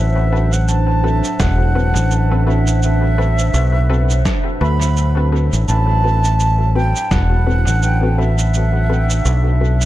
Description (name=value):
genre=ambient dub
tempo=84 BPM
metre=4/4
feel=swing 57% on 16ths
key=A dorian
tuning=A4 = 440 Hz
part: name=wooden flute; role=melody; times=0.0-9.9 s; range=E5 to B5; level=-22 LUFS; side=right 2 dB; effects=dub echo
part: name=warbly tape-like pad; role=sustained chords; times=0.0-9.9 s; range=A2 to C5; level=-26 LUFS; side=equal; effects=chorus, built-in reverb
part: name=fingered electric bass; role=bass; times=0.0-9.9 s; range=E1 to D2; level=-14 LUFS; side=equal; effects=none
part: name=filtered dub chord stab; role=stabs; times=0.3-9.9 s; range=C4 to B4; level=-26 LUFS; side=left 3 dB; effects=chorus, dub echo
part: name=electronic shaker and snare drum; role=drums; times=0.5-9.9 s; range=none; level=-25 LUFS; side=right 2 dB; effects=dub echo
part: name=electronic kick drum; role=drums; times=1.4-7.3 s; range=none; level=-21 LUFS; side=equal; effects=overdrive
room=light reverb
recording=echo-heavy mix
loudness=-13 LUFS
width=side -15 dB against mid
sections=0.0-9.9 A section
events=none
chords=0.0 Am69